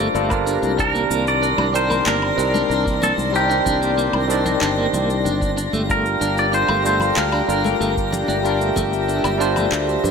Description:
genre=sunset chillout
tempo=94 BPM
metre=4/4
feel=straight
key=C dorian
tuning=A4 = 439 Hz
part: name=twangy electric guitar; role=melody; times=0.0-10.1 s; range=G4 to D5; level=-22 LUFS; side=right 1 dB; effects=phaser, tape echo
part: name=barky tine electric piano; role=accompaniment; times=0.0-10.1 s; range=Eb3 to D5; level=-22 LUFS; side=moving between left 3 dB and right 3 dB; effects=auto-pan, tape echo
part: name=airy breathy pad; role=sustained chords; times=0.0-10.1 s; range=G4 to C6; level=-25 LUFS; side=left 2 dB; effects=chorus
part: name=clean electric guitar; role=arpeggios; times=0.0-10.1 s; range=A3 to D4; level=-26 LUFS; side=right 2 dB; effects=tremolo, tape echo
part: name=sustaining fretless electric bass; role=bass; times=0.0-10.1 s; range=G1 to G2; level=-24 LUFS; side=equal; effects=tube saturation
part: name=twinkling granular texture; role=texture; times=0.0-10.1 s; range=Bb6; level=-31 LUFS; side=right 2 dB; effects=built-in reverb
part: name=electronic shaker, woodblock and handclaps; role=drums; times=0.2-10.1 s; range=none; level=-28 LUFS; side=left 2 dB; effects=overdrive, studio reverb
part: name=electronic kick drum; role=drums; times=0.3-8.9 s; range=none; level=-27 LUFS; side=equal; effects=overdrive, studio reverb
part: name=congas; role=percussion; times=0.6-10.1 s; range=none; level=-31 LUFS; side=left 3 dB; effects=none
room=moderate scoring stage reverb, RT60 1.8 s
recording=none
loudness=-16 LUFS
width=side -6 dB against mid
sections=0.0-10.1 A section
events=none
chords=0.0 Gm9; 0.8 Cm9; 5.6 Gm9

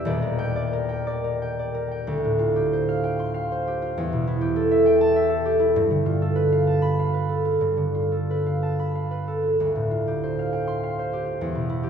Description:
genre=classical, solo harp piece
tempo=58-70 BPM (dotted quarters)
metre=6/8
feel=rubato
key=D dorian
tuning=A4 = 440 Hz
part: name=concert harp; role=solo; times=0.0-11.9 s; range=Eb1 to C6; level=-21 LUFS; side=equal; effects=none
room=wet concert hall reverb, RT60 2.6 s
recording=heard from further back in the room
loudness=-21 LUFS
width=side -7 dB against mid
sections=0.0-2.1 A section; 2.1-11.9 B section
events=none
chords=0.0 Ebmaj7; 2.1 Dm7; 3.9 Em7; 5.7 G9; 9.6 Dm7

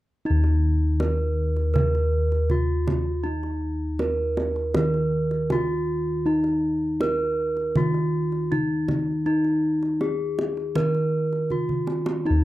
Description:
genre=Javanese gamelan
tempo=80 BPM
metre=4/4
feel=straight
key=unclear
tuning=A4 = 440 Hz
part: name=gamelan-type bronze metallophone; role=melody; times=0.3-12.4 s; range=Eb4 to Bb4+25c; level=-25 LUFS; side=right 1 dB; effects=none
part: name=gamelan-type bossed gongs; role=bass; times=0.3-12.4 s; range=Eb2 to F4+30c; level=-24 LUFS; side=equal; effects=none
part: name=kendang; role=percussion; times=0.4-12.2 s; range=none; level=-28 LUFS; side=right 1 dB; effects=none
room=light reverb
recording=dry, close 1970s-style studio recording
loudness=-21 LUFS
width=side -15 dB against mid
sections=0.3-12.3 A section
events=drum fill 11.5-12.3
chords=none

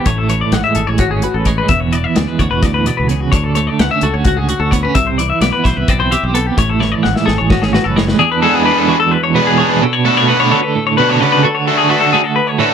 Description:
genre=math rock and midwest emo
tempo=258 BPM (eighths)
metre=7/8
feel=straight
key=A major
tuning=A4 = 440 Hz
part: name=twelve-string electric guitar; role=accompaniment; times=0.0-12.7 s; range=E2 to B4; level=-16 LUFS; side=right 6 dB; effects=tremolo
part: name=semi-hollow electric guitar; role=arpeggios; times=0.0-12.7 s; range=F#4 to F#5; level=-16 LUFS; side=left 7 dB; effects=spring reverb
part: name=modern bright fingered electric bass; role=bass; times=0.1-8.1 s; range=E1 to D2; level=-19 LUFS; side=equal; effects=none
part: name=modern studio drum kit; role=drums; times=0.1-8.2 s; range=hi-hat, kick drum, snare drum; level=-17 LUFS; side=left 1 dB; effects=none
part: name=overdriven electric guitar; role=riff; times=8.4-12.7 s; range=A3 to B4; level=-14 LUFS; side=equal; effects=none
room=little or no reverb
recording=none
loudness=-11 LUFS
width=side -8 dB against mid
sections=0.0-8.2 A section; 8.2-12.7 B section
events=drum fill 6.8-8.2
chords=0.1 Amaj7; 1.7 E7; 3.3 Dmaj7; 5.0 Cmaj7; 6.6 Amaj7; 8.2 E7; 9.8 Bm7; 11.4 Dmaj7

